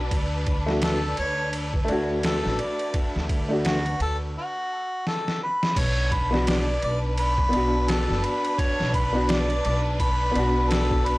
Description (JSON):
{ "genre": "trip hop", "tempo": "85 BPM", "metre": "4/4", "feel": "swing 59% on 16ths", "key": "B minor", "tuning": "A4 = 440 Hz", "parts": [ { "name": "warm upright piano", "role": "accompaniment", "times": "0.0-11.2 s", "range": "A3 to F#4", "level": "-27 LUFS", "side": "left 1 dB", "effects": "harmonic tremolo" }, { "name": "warm symphonic violin section", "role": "sustained chords", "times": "0.0-11.2 s", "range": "D4 to B4", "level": "-32 LUFS", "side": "equal", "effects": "vintage 12-bit sampler grit" }, { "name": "upright bass", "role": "bass", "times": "0.0-11.2 s", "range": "F#1 to D2", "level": "-27 LUFS", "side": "equal", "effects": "none" }, { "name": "trip hop sampler-style drum kit", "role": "drums", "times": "0.1-11.2 s", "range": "crash cymbal, kick drum, ride cymbal, snare drum", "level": "-28 LUFS", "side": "equal", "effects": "small room ambience" }, { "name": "mellow harmonica", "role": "melody", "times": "0.8-11.2 s", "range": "F#4 to D5", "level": "-27 LUFS", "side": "equal", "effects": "tape echo" } ], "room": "little or no reverb", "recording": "dry, gritty hardware recording", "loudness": "-22 LUFS", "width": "side -20 dB against mid", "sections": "0.0-5.8 A section; 5.8-11.2 B section", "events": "break 4.4-5.8; drum fill 5.1-5.8", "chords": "0.1 D; 5.8 Bm", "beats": "| 0.12 0.82 1.53 2.23 | 2.94 3.65 4.35 5.06 | 5.76 6.47 7.18 7.88 | 8.59 9.29 10.00 10.71" }